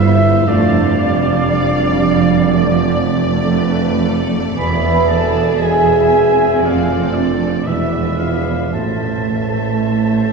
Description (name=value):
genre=classical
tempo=58 BPM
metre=4/4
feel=rubato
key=unclear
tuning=A4 = 442 Hz
part: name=warm symphonic violin section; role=melody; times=0.0-10.3 s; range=C5 to E5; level=-28 LUFS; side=left 4 dB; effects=none
part: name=mellow hollow flute section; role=second line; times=0.0-10.3 s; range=D5 to B5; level=-22 LUFS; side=right 1 dB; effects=none
part: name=warm oboe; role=second line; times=0.0-10.3 s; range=D5 to B5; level=-25 LUFS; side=right 2 dB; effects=none
part: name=warm symphonic violin section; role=second line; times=0.0-10.3 s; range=G#4 to F5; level=-29 LUFS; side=left 1 dB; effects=none
part: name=warm symphonic viola section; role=accompaniment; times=0.0-10.3 s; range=F3 to C4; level=-23 LUFS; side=right 1 dB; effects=none
part: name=dark French horn section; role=sustained chords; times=0.0-10.3 s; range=D4 to B4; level=-19 LUFS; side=equal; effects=none
part: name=clear tuba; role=bass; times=0.0-10.3 s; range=E1 to A1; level=-22 LUFS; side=right 4 dB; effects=none
part: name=rich symphonic double bass section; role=bass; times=0.0-10.3 s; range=E1 to A1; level=-22 LUFS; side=right 4 dB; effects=none
part: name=warm symphonic cello section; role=bass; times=0.0-10.3 s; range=E2 to A2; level=-19 LUFS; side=right 6 dB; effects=none
part: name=clear trombone section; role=sustained chords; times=0.5-10.3 s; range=E3 to B3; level=-26 LUFS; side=right 3 dB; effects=none
part: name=dark trumpet section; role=stabs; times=0.5-10.3 s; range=C5 to E5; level=-27 LUFS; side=left 4 dB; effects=none
room=wet concert hall reverb, RT60 2.2 s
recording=heard from further back in the room, studio ambience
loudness=-13 LUFS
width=side -4 dB against mid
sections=0.0-10.3 A section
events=none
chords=0.5 Dm/F; 4.6 E; 6.6 Dm/F; 7.7 E7b9; 8.7 Am